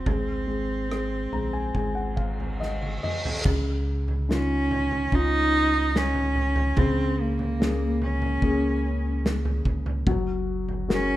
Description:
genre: pop ballad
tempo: 72 BPM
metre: 4/4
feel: straight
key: Db major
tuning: A4 = 440 Hz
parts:
  - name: rich cello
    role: melody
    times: 0.0-11.2 s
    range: Bb3 to Eb4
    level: -26 LUFS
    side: right 1 dB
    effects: none
  - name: dark concert grand piano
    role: accompaniment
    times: 0.0-11.2 s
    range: Db3 to Bb5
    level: -29 LUFS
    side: left 3 dB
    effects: none
  - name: warm sub bass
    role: bass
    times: 0.0-11.2 s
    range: Gb1 to Db2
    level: -28 LUFS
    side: equal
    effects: none
  - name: loose indie drum kit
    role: drums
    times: 0.1-11.1 s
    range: crash cymbal, kick drum, rim click, snare drum, toms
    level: -29 LUFS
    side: equal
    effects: none
  - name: reverse cymbal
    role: sound effects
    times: 2.2-3.5 s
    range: none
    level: -34 LUFS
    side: right 1 dB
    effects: none
room: light reverb, small room ambience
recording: rough home demo mix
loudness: -23 LUFS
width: side -15 dB against mid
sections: 0.0-3.4 A section; 3.4-11.2 B section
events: grand piano fill 0.9-3.4; reverse cymbal 2.2-3.4; drum fill 2.6-3.4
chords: 0.1 Abadd9; 3.4 Dbadd9; 6.8 Bbm7/Db; 10.1 Gbadd9

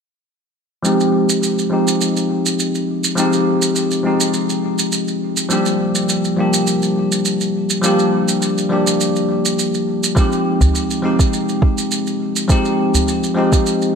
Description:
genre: organic downtempo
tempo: 103 BPM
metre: 4/4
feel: swing 53% on 16ths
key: F dorian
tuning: A4 = 440 Hz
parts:
  - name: bell-like tine electric piano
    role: accompaniment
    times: 0.8-14.0 s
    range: F3 to G4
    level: -16 LUFS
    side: left 1 dB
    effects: lush chorus, sidechain pumping, low-pass filter, ping-pong delay
  - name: shaker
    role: drums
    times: 0.8-13.9 s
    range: none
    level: -22 LUFS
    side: right 5 dB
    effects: none
  - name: electronic kick drum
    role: drums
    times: 10.2-13.6 s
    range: none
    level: -14 LUFS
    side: right 1 dB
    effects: none
  - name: udu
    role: percussion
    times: 10.6-13.1 s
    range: none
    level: -16 LUFS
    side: equal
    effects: none
room: wet lush hall reverb, RT60 1.6 s, digital ambience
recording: bright 1980s-style digital production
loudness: -14 LUFS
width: side -6 dB against mid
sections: 0.8-14.0 A section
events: filter sweep on tine electric piano 0.8-14.0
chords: 0.8 Fm7; 5.5 Gm7; 10.2 Fm7

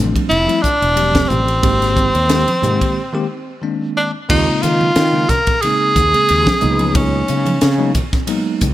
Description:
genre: electric jazz fusion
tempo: 90 BPM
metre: 4/4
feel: swing 54% on 16ths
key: unclear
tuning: A4 = 440 Hz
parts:
  - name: bell-like tine electric piano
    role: accompaniment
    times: 0.0-8.6 s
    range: Db3 to Ab4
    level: -21 LUFS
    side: left 1 dB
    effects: slow stereo tremolo
  - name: fretless electric bass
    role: bass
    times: 0.0-8.7 s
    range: E1 to Eb3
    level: -18 LUFS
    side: equal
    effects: wide subtle chorus
  - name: crisp fusion drum kit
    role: drums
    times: 0.2-8.7 s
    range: crash cymbal, hi-hat, kick drum, ride cymbal, snare drum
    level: -20 LUFS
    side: equal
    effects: none
  - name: clear tenor saxophone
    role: melody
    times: 0.3-8.0 s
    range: C4 to Bb4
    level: -16 LUFS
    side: equal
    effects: none
  - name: congas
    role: percussion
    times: 1.3-8.1 s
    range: none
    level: -25 LUFS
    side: right 1 dB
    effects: none
room: light reverb, small room ambience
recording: none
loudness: -13 LUFS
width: side -14 dB against mid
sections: 0.0-4.3 A section; 4.3-8.7 B section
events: break 3.0-4.3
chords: 0.0 Fmaj9; 1.6 Abmaj9; 4.3 Eb13sus4; 6.6 Db13sus4

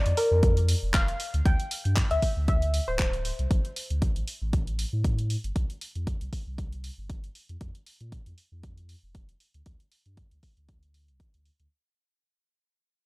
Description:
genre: deep house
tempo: 117 BPM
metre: 4/4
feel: swing 55% on 16ths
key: unclear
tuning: A4 = 435 Hz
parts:
  - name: soft round pluck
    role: melody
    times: 0.0-3.1 s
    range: Bb4 to G5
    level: -30 LUFS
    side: left 1 dB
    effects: lush chorus, vintage 12-bit sampler grit, analog delay
  - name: warm sub bass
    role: bass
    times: 0.1-11.7 s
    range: D1 to Bb2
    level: -28 LUFS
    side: equal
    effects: sidechain pumping
  - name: house drum kit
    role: drums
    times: 0.1-11.7 s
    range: handclaps, hi-hat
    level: -34 LUFS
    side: equal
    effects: none
  - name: electronic kick drum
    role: drums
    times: 0.4-11.3 s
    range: none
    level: -26 LUFS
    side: equal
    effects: none
room: digital ambience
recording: dry, gritty hardware recording, transformer saturation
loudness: -24 LUFS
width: side -23 dB against mid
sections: 0.0-11.7 A section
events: fade-out 0.0-11.7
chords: 0.0 Fsus4; 1.2 D7sus2; 3.5 N.C.; 5.6 C5; 7.4 N.C.

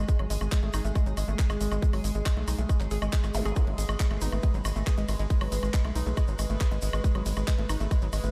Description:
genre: psychedelic trance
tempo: 138 BPM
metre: 4/4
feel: straight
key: G# phrygian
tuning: A4 = 440 Hz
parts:
  - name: evolving wavetable pad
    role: sustained chords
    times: 0.0-8.3 s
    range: G#3 to B4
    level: -39 LUFS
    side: equal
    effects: chorus, built-in reverb, phaser, sidechain pumping
  - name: woody wave-folded pluck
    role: riff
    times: 0.0-8.3 s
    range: F#3 to G#4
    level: -39 LUFS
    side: equal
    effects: chorus, sidechain pumping, diffuse ambient delay
  - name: tight sequencer bass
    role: bass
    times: 0.0-8.3 s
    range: G#1 to B1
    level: -32 LUFS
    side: equal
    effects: none
  - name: electronic kick drum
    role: drums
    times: 0.1-8.0 s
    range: none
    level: -27 LUFS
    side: equal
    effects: none
  - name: garage drum kit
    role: drums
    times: 0.1-8.3 s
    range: handclaps, hi-hat, ride cymbal, woodblock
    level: -40 LUFS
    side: equal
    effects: none
  - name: tube shaker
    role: percussion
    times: 0.1-8.3 s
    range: none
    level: -47 LUFS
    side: equal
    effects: none
  - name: zap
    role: sound effects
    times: 3.3-3.5 s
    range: none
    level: -44 LUFS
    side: equal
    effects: none
  - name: formant-sweep wobble bass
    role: second line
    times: 4.2-6.0 s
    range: G#3 to B3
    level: -51 LUFS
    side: equal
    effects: none
room: light reverb, digital ambience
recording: none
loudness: -28 LUFS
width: mono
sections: 0.0-8.3 A section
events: none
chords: 0.0 G#5

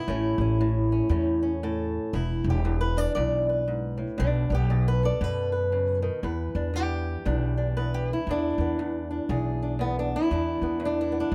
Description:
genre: acoustic country blues, solo or duo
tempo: 117 BPM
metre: 4/4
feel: swing 61% on 8ths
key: unclear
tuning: A4 = 440 Hz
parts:
  - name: fingerpicked old ladder-braced acoustic guitar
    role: melody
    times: 0.0-11.3 s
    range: E2 to D5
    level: -29 LUFS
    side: equal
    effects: none
  - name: upright bass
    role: bass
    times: 0.1-11.3 s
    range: E1 to F#2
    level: -30 LUFS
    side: equal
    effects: none
room: light reverb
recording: none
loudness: -26 LUFS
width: mono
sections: 0.0-6.2 A section; 6.2-11.3 B section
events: steel-string acoustic guitar solo 0.0-6.2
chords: 0.1 A; 2.1 E7(no3); 4.2 B7(no3); 6.2 E7(no3)

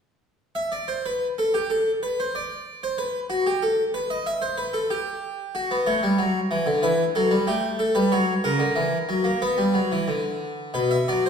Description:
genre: classical, baroque-style two-part invention for harpsichord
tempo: 92 BPM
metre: 4/4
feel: straight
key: E minor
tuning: A4 = 442 Hz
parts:
  - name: harpsichord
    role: solo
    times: 0.6-11.3 s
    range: B2 to E5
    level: -21 LUFS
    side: equal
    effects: none
room: wet recital hall reverb, RT60 1.3 s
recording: heard from further back in the room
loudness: -22 LUFS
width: side -6 dB against mid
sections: 0.4-10.7 A section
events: none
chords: 0.4 N.C.; 5.5 Bm (rootless); 6.8 Em; 8.1 F#; 9.4 Bm; 10.7 E5/B

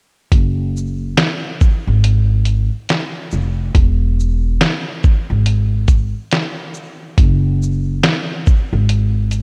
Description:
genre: lo-fi hip hop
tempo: 70 BPM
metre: 4/4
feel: swing 60% on 16ths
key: unclear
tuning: A4 = 440 Hz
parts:
  - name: upright bass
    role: bass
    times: 0.3-9.4 s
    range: E1 to G#1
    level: -17 LUFS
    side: equal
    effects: none
  - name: lo-fi sampler-style drum kit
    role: drums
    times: 0.3-9.4 s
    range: handclaps, hi-hat, kick drum, shaker, snare drum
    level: -17 LUFS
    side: equal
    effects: none
room: light reverb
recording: none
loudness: -16 LUFS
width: mono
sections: 0.3-9.4 A section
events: none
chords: none

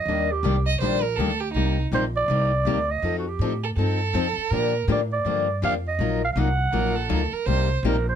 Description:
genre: acoustic string swing (jazz manouche)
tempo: 162 BPM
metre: 4/4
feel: swing 62% on 8ths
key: unclear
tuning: A4 = 440 Hz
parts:
  - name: growling clarinet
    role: melody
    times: 0.0-8.2 s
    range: Gb4 to Gb5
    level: -25 LUFS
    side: right 4 dB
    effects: none
  - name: upright bass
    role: bass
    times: 0.0-8.2 s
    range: Bb1 to Bb2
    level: -25 LUFS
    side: equal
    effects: none
  - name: picked steel-string acoustic guitar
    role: accompaniment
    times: 0.1-8.0 s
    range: C3 to Bb4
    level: -26 LUFS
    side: left 8 dB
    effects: none
  - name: warm violin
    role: second line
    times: 0.7-7.8 s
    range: Eb4 to Eb5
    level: -27 LUFS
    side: right 8 dB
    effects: none
room: little or no reverb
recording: close, detailed microphones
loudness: -21 LUFS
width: side -9 dB against mid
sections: 0.0-8.2 A section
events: none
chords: 0.1 Ebmaj7; 3.0 F7; 4.5 Bb6; 6.0 Ebmadd9/Bb; 7.5 Cm7

